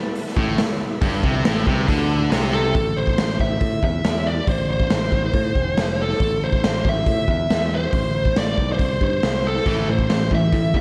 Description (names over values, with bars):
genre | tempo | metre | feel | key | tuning
hard rock | 139 BPM | 4/4 | straight | A minor | A4 = 440 Hz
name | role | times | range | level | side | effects
overdriven tonewheel organ | sustained chords | 0.0-2.7 s | A3 to B4 | -36 LUFS | equal | none
raw garage drum kit | drums | 0.2-10.8 s | hi-hat, kick drum, snare drum | -24 LUFS | equal | none
cranked stack guitar | riff | 0.4-2.8, 9.7-10.8 s | G2 to A3 | -28 LUFS | equal | overdrive, spring reverb, slapback echo
distorted electric guitar | riff | 0.4-2.7, 9.7-10.8 s | G2 to A3 | -28 LUFS | equal | overdrive, slapback echo
picked electric bass | bass | 0.4-10.8 s | E1 to A2 | -26 LUFS | equal | none
bluesy overdriven lead guitar | melody | 2.5-10.8 s | A4 to E5 | -26 LUFS | equal | distortion, slapback echo, analog delay
room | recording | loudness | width
moderate lush hall reverb, RT60 1.6 s, small room ambience | big arena sound | -20 LUFS | mono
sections
0.0-2.7 A section; 2.7-10.8 B section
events
none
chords
0.0 Am; 5.8 F5; 6.2 Am; 8.8 C5; 9.2 Am/C; 9.7 Am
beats
0.16 0.59 | 1.02 1.45 1.88 2.32 | 2.75 3.18 3.61 4.04 | 4.48 4.91 5.34 5.77 | 6.21 6.64 7.07 7.50 | 7.93 8.37 8.80 9.23 | 9.66 10.10 10.53